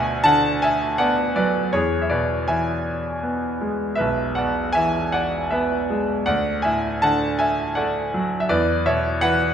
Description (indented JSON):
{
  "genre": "classical, lyrical solo piano",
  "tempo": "80 BPM",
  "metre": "3/4",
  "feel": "rubato",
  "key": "unclear",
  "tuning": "A4 = 440 Hz",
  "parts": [
    { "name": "bright concert grand piano", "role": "solo", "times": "0.0-9.5 s", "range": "B1 to A5", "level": "-19 LUFS", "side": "equal", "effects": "none" }
  ],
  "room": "moderate recital hall reverb, RT60 1.5 s",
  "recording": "recorded in a church or concert hall",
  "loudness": "-19 LUFS",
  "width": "side -8 dB against mid",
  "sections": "0.0-9.5 A section",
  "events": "none",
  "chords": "0.0 Bm/D; 1.7 E; 6.3 Dadd9; 8.5 E5",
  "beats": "0.24 0.98 | 1.73 2.48 3.22 | 3.98 4.75 5.51 | 6.27 7.03 7.77 | 8.49 9.22"
}